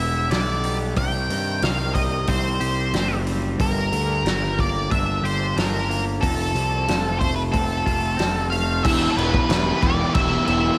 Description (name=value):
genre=quiet-loud alternative rock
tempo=91 BPM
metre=4/4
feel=straight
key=E phrygian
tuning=A4 = 436 Hz
part: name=octave-fuzz lead guitar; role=melody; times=0.0-10.8 s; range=A4 to G5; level=-27 LUFS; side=equal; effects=distortion, slapback echo
part: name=twangy electric guitar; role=arpeggios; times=0.0-8.8 s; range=F2 to G4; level=-32 LUFS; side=equal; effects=slapback echo, digital delay
part: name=fuzz picked electric bass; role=bass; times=0.0-10.7 s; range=E1 to G2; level=-27 LUFS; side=equal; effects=overdrive
part: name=loose indie drum kit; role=drums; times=0.3-10.6 s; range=crash cymbal, hi-hat, kick drum, snare drum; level=-28 LUFS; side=equal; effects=none
part: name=fuzz guitar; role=riff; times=8.8-10.8 s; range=E3 to G4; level=-24 LUFS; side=equal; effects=distortion
room=light reverb, small room ambience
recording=none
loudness=-22 LUFS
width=mono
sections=0.0-8.8 A section; 8.8-10.8 B section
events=none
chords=0.0 Em; 1.0 Cm; 3.6 Gm; 6.2 F; 8.8 Em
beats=0.30 | 0.96 1.62 2.28 2.93 | 3.59 4.25 4.91 5.56 | 6.22 6.88 7.53 8.19 | 8.84 9.49 10.15